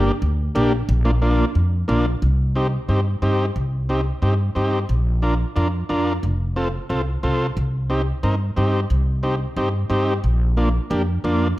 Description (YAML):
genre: latin, cumbia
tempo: 180 BPM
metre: 4/4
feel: straight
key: C dorian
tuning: A4 = 440 Hz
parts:
  - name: overdriven combo organ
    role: accompaniment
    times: 0.0-11.5 s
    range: Bb3 to Bb4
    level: -22 LUFS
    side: equal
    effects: none
  - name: upright bass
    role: bass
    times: 0.0-11.5 s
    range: F1 to G2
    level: -20 LUFS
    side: equal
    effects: none
room: light reverb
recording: none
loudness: -18 LUFS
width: side -17 dB against mid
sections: 0.0-2.2 A section; 2.2-11.6 B section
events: none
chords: 0.0 Gm; 0.9 Bb; 2.2 Cm; 4.9 Bb; 6.2 F; 7.6 Cm; 10.2 Bb